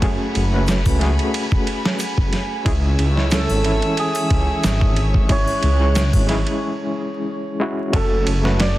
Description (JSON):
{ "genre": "trip hop", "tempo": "91 BPM", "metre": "4/4", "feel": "swing 54% on 16ths", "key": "F# minor", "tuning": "A4 = 439 Hz", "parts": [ { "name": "overdriven reed electric piano", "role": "accompaniment", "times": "0.0-8.8 s", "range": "E3 to C#5", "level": "-24 LUFS", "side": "equal", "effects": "fast tremolo, tape echo" }, { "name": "warm studio string section", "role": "sustained chords", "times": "0.0-8.8 s", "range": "C#3 to F#6", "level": "-29 LUFS", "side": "left 1 dB", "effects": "none" }, { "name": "dark detuned saw bass", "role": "bass", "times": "0.0-8.7 s", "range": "F#1 to F#2", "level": "-19 LUFS", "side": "equal", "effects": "none" }, { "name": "dusty soul sampler-style drum kit", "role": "drums", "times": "0.0-8.8 s", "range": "kick drum, ride cymbal, snare drum", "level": "-21 LUFS", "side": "equal", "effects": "studio reverb" }, { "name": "wind-like tuned noise texture", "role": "texture", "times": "0.0-6.6 s", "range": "none", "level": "barely audible", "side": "none", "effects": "none" }, { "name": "tube shaker and triangle", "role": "percussion", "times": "0.7-6.3 s", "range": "none", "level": "-38 LUFS", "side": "equal", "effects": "none" }, { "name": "hammered dulcimer", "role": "melody", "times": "3.3-8.8 s", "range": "G#4 to D5", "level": "-24 LUFS", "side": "right 2 dB", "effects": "tape echo" } ], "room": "little or no reverb", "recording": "dense, heavily limited modern master, vinyl crackle", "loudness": "-16 LUFS", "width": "side -16 dB against mid", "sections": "0.0-7.9 A section", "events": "break 6.6-7.9", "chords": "0.0 F#madd9; 2.7 C#m; 7.9 F#m" }